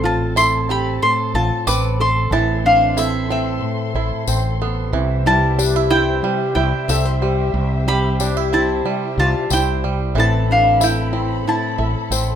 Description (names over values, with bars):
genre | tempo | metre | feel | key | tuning
acoustic folk duo or small band | 92 BPM | 4/4 | straight | unclear | A4 = 440 Hz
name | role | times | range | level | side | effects
mandolin | melody | 0.0-12.1 s | E5 to D6 | -19 LUFS | left 1 dB | none
metal-body resonator slide guitar | second line | 0.0-12.1 s | C4 to B4 | -26 LUFS | right 4 dB | none
nylon-string guitar | accompaniment | 0.0-12.4 s | A2 to C5 | -23 LUFS | left 3 dB | none
muted studio string section | sustained chords | 0.0-12.4 s | G4 to C6 | -31 LUFS | left 5 dB | none
bluegrass banjo | arpeggios | 0.0-12.4 s | E3 to E4 | -25 LUFS | right 10 dB | none
mellow fretless electric bass | bass | 0.0-12.4 s | A1 to C2 | -20 LUFS | equal | none
tambourine | percussion | 0.4-12.3 s | none | -25 LUFS | left 10 dB | none
room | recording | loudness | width
light reverb | minimal, uncompressed stereo recording | -15 LUFS | side -9 dB against mid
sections
0.0-12.4 A section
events
none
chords
0.0 Am; 4.9 C; 10.2 Amadd9